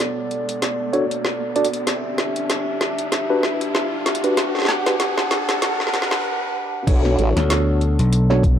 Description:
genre	glitch hop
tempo	96 BPM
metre	4/4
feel	swing 57% on 16ths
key	B minor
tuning	A4 = 440 Hz
part	dark analog pad	sustained chords	0.0-8.6 s	B3 to F#5	-25 LUFS	equal	chorus, sidechain pumping
part	drum and bass drum kit	drums	0.0-8.6 s	crash cymbal, hi-hat, snare drum	-23 LUFS	equal	none
part	riser	sound effects	0.0-6.2 s	none	-28 LUFS	left 1 dB	none
part	mellow tine electric piano	stabs	0.9-8.4 s	D4 to D5	-23 LUFS	right 1 dB	medium stereo tremolo, vintage 12-bit sampler grit, sidechain pumping, low-pass filter, ping-pong delay
part	formant-sweep wobble bass	bass	6.9-7.3 s	A1 to B1	-19 LUFS	equal	chorus
part	electronic kick drum	drums	6.9-8.6 s	none	-16 LUFS	equal	overdrive
part	vintage slap bass	bass	7.4-8.6 s	B1 to D2	-17 LUFS	equal	tube saturation
room	light reverb, digital ambience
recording	high-pass filter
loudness	-18 LUFS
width	side -9 dB against mid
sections	0.0-6.9 A section; 6.9-8.6 B section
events	build-up 0.0-6.9; drum fill 0.0-6.2; riser 0.0-6.2; filter sweep on tine electric piano 0.0-6.9; filter sweep 0.0-6.9; break 6.2-6.9; drop 6.9-8.6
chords	0.0 Bm7; 1.9 Em7; 6.9 Bm7

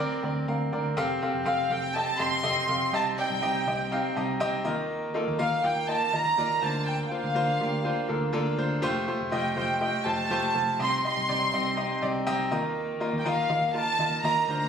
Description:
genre	piano-driven pop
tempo	122 BPM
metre	4/4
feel	straight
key	unclear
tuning	A4 = 441 Hz
part	warm studio violin section	melody	0.0-14.7 s	D5 to C6	-27 LUFS	right 1 dB	none
part	clear concert grand piano	accompaniment	0.0-14.7 s	C3 to A5	-28 LUFS	equal	none
part	vintage muted picked electric bass	bass	0.0-14.7 s	F1 to Eb2	-34 LUFS	equal	none
room	moderate large studio reverb, RT60 0.9 s, studio ambience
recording	recorded on a phone in the room, studio reverb, compression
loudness	-24 LUFS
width	side -7 dB against mid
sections	1.0-14.7 A section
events	grand piano fill 3.9-4.9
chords	0.0 Bbadd9/D; 1.0 Fadd9; 2.9 Cm; 4.7 Ebsus2; 6.6 Bbadd9/D; 8.8 Fadd9; 10.8 Cm; 12.5 Ebsus2

